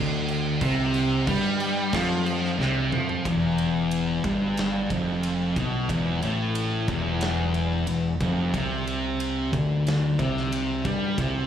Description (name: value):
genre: stoner and doom metal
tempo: 91 BPM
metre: 4/4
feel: straight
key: E phrygian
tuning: A4 = 444 Hz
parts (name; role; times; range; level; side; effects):
- heavy high-gain guitar; riff; 0.0-3.2 s; C3 to G3; -31 LUFS; right 4 dB; distortion
- thick fuzz guitar; riff; 0.0-11.5 s; E2 to G3; -26 LUFS; left 5 dB; distortion, slapback echo
- thick fuzz guitar; riff; 0.0-11.5 s; E2 to G3; -29 LUFS; right 9 dB; distortion
- fingered electric bass; bass; 0.0-11.5 s; E1 to G2; -31 LUFS; right 1 dB; overdrive
- big rock drum kit; drums; 0.3-11.3 s; crash cymbal, kick drum, ride cymbal, snare drum, toms; -32 LUFS; right 1 dB; none
room: light reverb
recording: live gig heard through the venue's PA, club ambience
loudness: -23 LUFS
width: side -9 dB against mid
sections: 0.0-3.3 A section; 3.3-11.5 B section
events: drum fill 2.6-3.3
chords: 0.0 C5; 3.3 Em; 8.5 C5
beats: | 0.61 1.27 1.93 2.59 | 3.25 3.91 4.57 5.23 | 5.89 6.55 7.21 7.87 | 8.54 9.20 9.86 10.52 | 11.18